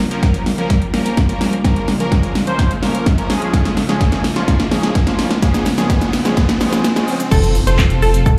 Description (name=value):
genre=dance-pop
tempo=127 BPM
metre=4/4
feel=straight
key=Bb dorian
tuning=A4 = 440 Hz
part: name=string machine, violas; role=sustained chords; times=0.0-8.4 s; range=C3 to G5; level=-29 LUFS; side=equal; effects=ensemble chorus, sidechain pumping
part: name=riser and impact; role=sound effects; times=0.0-8.4 s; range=none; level=-28 LUFS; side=equal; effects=slapback echo
part: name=big bright polysynth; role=accompaniment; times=0.1-8.2 s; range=F3 to C5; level=-24 LUFS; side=equal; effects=sidechain pumping, slapback echo
part: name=pop drum kit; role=drums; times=0.1-8.4 s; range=crash cymbal, handclaps, hi-hat, kick drum, shaker, snare drum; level=-18 LUFS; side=equal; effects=overdrive
part: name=analog pluck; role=melody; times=7.3-8.4 s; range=A4 to C5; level=-22 LUFS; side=equal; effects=chorus
part: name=round analog bass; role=bass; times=7.3-8.4 s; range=F1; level=-18 LUFS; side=equal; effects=sidechain pumping
room=digital ambience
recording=live gig heard through the venue's PA, club reverb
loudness=-16 LUFS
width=mono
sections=0.0-7.3 A section; 7.3-8.4 B section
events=build-up 0.0-7.3; drum fill 0.0-7.3; riser 0.0-7.3; drop 7.3-8.4; impact 7.3-8.4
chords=0.0 Bbm; 3.3 Db; 7.3 F